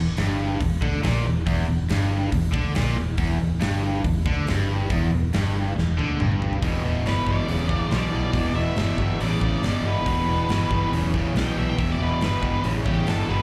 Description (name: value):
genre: blues rock power trio and southern rock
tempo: 139 BPM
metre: 4/4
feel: straight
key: E minor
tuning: A4 = 439 Hz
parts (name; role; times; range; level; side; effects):
- cranked stack guitar; riff; 0.0-13.4 s; E2 to D3; -28 LUFS; equal; overdrive
- vintage muted fingered electric bass; bass; 0.0-13.4 s; E1 to D2; -27 LUFS; equal; none
- huge arena drum kit; drums; 0.2-13.2 s; hi-hat, kick drum, snare drum, toms; -30 LUFS; equal; none
- octave-fuzz lead guitar; melody; 7.1-13.4 s; G4 to G5; -32 LUFS; equal; distortion
room: light reverb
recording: live gig heard through the venue's PA, club ambience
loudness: -23 LUFS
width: mono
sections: 0.0-6.6 A section; 6.6-13.4 B section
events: drum fill 5.8-6.6; lead electric guitar solo 6.6-13.4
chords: 0.0 Em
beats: 0.18 0.61 1.04 | 1.47 1.89 2.32 2.75 | 3.18 3.61 4.04 4.47 | 4.90 5.33 5.76 6.19 | 6.62 7.05 7.48 7.91 | 8.34 8.77 9.20 9.63 | 10.06 10.50 10.93 11.36 | 11.79 12.22 12.65 13.08